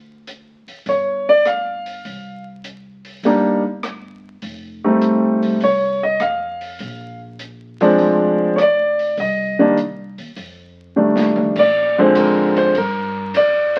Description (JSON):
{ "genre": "jazz piano trio", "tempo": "101 BPM", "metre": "4/4", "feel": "swing 69% on 8ths", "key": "Bb mixolydian", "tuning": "A4 = 443 Hz", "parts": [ { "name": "upright bass", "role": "bass", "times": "0.0-13.8 s", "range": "F1 to Bb2", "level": "-36 LUFS", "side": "equal", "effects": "none" }, { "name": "open jazz drum kit", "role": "drums", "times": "0.3-13.8 s", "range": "crash cymbal, hi-hat, kick drum, ride cymbal, rim click, snare drum, toms", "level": "-33 LUFS", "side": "equal", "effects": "none" }, { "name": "clear concert grand piano", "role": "melody", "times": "0.9-13.8 s", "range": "D3 to F5", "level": "-17 LUFS", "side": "equal", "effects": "none" } ], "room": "moderate studio reverb, RT60 0.9 s", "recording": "very old 78 rpm record, vinyl crackle", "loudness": "-17 LUFS", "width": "mono", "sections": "0.0-11.6 A section; 11.6-13.8 B section", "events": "drum fill 11.0-11.6; grand piano solo 11.6-13.8", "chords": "0.0 N.C.; 0.9 Dmadd11/G (rootless); 2.0 C5; 4.4 F7; 6.8 Bb7; 9.2 Cm; 10.4 F7; 11.6 Bb7" }